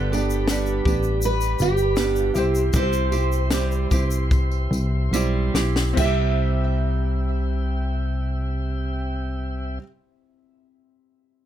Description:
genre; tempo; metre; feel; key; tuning
acoustic pop; 70-82 BPM; 4/4; straight; C major; A4 = 440 Hz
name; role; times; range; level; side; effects
picked steel-string acoustic guitar; melody; 0.0-9.8 s; G4 to E5; -26 LUFS; right 2 dB; ping-pong delay
clear upright piano; accompaniment; 0.0-11.5 s; C4 to E5; -34 LUFS; left 7 dB; none
nylon-string guitar; accompaniment; 0.0-9.9 s; G2 to G4; -28 LUFS; right 6 dB; none
mellow tonewheel organ; sustained chords; 0.0-9.8 s; C3 to C6; -33 LUFS; left 1 dB; slow rotary speaker
solid FM bass; bass; 0.0-9.8 s; G1 to C2; -23 LUFS; left 1 dB; none
tambourine; percussion; 0.1-6.4 s; none; -37 LUFS; left 9 dB; none
compact cocktail drum kit; drums; 0.3-6.2 s; crash cymbal, kick drum, shaker, snare drum; -24 LUFS; left 1 dB; none
room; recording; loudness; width
light reverb; none; -20 LUFS; side -11 dB against mid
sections
0.0-6.0 A section; 6.0-9.4 B section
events
slowing down 0.0-6.0; drum fill 4.3-6.0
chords
0.0 G; 2.4 C

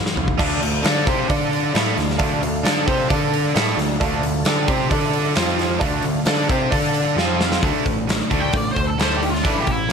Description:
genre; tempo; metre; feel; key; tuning
classic rock; 132 BPM; 4/4; straight; D minor; A4 = 440 Hz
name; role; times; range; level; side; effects
raw garage guitar; riff; 0.0-9.9 s; A2 to D5; -24 LUFS; left 12 dB; overdrive, spring reverb
big rock drum kit; drums; 0.1-9.9 s; crash cymbal, hi-hat, kick drum, snare drum, toms; -22 LUFS; equal; none
growling picked electric bass; bass; 0.2-9.9 s; A1 to D3; -24 LUFS; equal; overdrive
honky-tonk upright piano; accompaniment; 0.4-7.5 s; F4 to G5; -28 LUFS; right 5 dB; none
tonewheel organ; sustained chords; 0.4-7.6 s; C4 to F5; -34 LUFS; right 1 dB; none
distorted electric guitar; riff; 0.4-9.9 s; A2 to D5; -24 LUFS; right 17 dB; overdrive
octave-fuzz lead guitar; melody; 8.4-9.9 s; D4 to G5; -23 LUFS; equal; wah, distortion
room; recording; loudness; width
light reverb; none; -17 LUFS; side -6 dB against mid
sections
0.4-7.6 A section; 7.6-9.9 B section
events
drum fill 0.0-0.4, 7.2-7.6; honky-tonk piano fill 3.3-4.0; lead electric guitar solo 7.6-9.9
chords
0.4 Dm; 5.4 F5; 5.8 Dm; 7.2 F5; 7.6 D5

